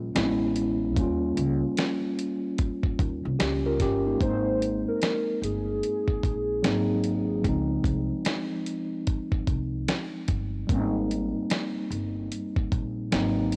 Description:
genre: lo-fi hip hop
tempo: 74 BPM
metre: 4/4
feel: swing 63% on 16ths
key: Ab major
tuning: A4 = 440 Hz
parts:
  - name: mellow tine electric piano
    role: accompaniment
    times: 0.0-13.6 s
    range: F3 to Bb4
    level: -30 LUFS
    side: equal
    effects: cassette tape
  - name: upright bass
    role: bass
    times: 0.0-13.6 s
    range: G1 to Eb2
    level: -34 LUFS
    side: equal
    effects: tube saturation
  - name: dusty soul sampler-style drum kit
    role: drums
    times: 0.2-13.6 s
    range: hi-hat, kick drum, snare drum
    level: -30 LUFS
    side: equal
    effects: cassette tape
  - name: warbly nostalgic lead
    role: melody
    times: 4.2-7.5 s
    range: Ab4 to C5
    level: -32 LUFS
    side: equal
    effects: chorus, tremolo, cassette tape, tape echo
room: digital ambience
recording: home recording on cassette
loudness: -27 LUFS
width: mono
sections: 0.0-4.2 A section; 4.2-13.6 B section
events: none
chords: 0.2 Amaj7; 1.0 Eb7; 4.2 Abmaj9; 6.6 Ab7; 7.5 Dbmaj9 (rootless); 10.7 Abmaj9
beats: 0.15 | 0.96 1.77 2.58 3.40 | 4.21 5.02 5.83 6.64 | 7.45 8.26 9.07 9.88 | 10.69 11.50 12.31 13.12

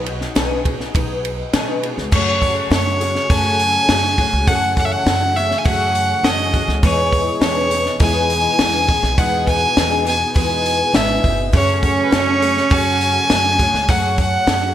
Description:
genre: indie folk with a building arrangement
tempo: 102 BPM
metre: 4/4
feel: straight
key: unclear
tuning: A4 = 443 Hz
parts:
  - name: picked twelve-string acoustic guitar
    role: accompaniment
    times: 0.0-14.7 s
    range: B2 to G#4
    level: -23 LUFS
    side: left 4 dB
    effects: ensemble chorus
  - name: upright bass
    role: bass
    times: 0.0-14.7 s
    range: F#1 to B2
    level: -23 LUFS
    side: equal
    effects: none
  - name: compact cocktail drum kit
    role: drums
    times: 0.1-14.6 s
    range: crash cymbal, hi-hat, kick drum, ride cymbal, snare drum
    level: -19 LUFS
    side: equal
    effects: gated reverb
  - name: rich fiddle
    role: melody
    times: 2.1-14.7 s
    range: B4 to G#5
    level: -17 LUFS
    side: equal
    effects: digital delay
  - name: tonewheel organ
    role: sustained chords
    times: 2.1-13.9 s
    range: B2 to G#4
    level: -31 LUFS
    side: right 3 dB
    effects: chorus vibrato, slow rotary speaker
  - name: rich cello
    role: second line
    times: 11.5-13.8 s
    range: C#4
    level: -20 LUFS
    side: right 5 dB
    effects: none
room: moderate plate reverb, RT60 1.9 s, small room ambience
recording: bright 1980s-style digital production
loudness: -14 LUFS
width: side -11 dB against mid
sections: 0.0-2.1 A section; 2.1-14.7 B section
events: none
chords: 0.0 B6; 2.1 F#madd9; 6.8 Emaj7; 11.5 F#madd9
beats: 0.36 0.95 1.54 | 2.13 2.72 3.30 3.89 | 4.48 5.07 5.66 6.25 | 6.83 7.42 8.01 8.60 | 9.18 9.77 10.36 10.95 | 11.54 12.12 12.71 13.30 | 13.89 14.48

